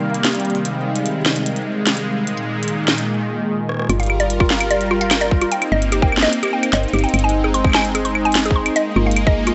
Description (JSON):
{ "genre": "IDM", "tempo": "148 BPM", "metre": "4/4", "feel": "straight", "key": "G phrygian", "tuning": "A4 = 441 Hz", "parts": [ { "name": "warm analog pad", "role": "sustained chords", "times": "0.0-9.5 s", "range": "Bb2 to Bb4", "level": "-23 LUFS", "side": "equal", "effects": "chorus" }, { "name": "bubbling stepped-filter texture", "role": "texture", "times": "0.0-3.1 s", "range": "F5", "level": "-35 LUFS", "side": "equal", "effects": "chorus, built-in reverb" }, { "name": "glitchy drum kit", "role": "drums", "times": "0.1-9.5 s", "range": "claves, hi-hat, rim click, snare drum", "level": "-23 LUFS", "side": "equal", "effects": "studio ambience, delay" }, { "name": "mallet-like synth pluck", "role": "arpeggios", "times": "3.9-9.5 s", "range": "F4 to C6", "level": "-23 LUFS", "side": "equal", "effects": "chorus, delay" }, { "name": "woody FM bass", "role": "bass", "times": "3.9-9.5 s", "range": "G1", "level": "-24 LUFS", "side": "equal", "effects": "tube saturation" }, { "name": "electronic kick drum", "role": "drums", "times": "4.4-9.3 s", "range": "none", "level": "-18 LUFS", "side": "equal", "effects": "studio ambience" } ], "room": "light reverb", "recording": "nothing above 8.0 kHz", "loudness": "-18 LUFS", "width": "mono", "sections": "0.0-3.9 A section; 3.9-9.5 B section", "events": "drum fill 3.6-3.9", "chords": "0.0 Cm7; 0.7 Ab; 2.3 Bb7sus4; 3.9 Gm7; 5.5 Cm7/G; 7.1 Ab/G; 8.8 Bb7sus4/G", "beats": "0.25 | 0.65 1.06 1.46 1.87 | 2.27 2.68 3.08 3.49 | 3.90 4.30 4.71 5.11 | 5.52 5.92 6.33 6.73 | 7.14 7.54 7.95 8.36 | 8.76 9.16" }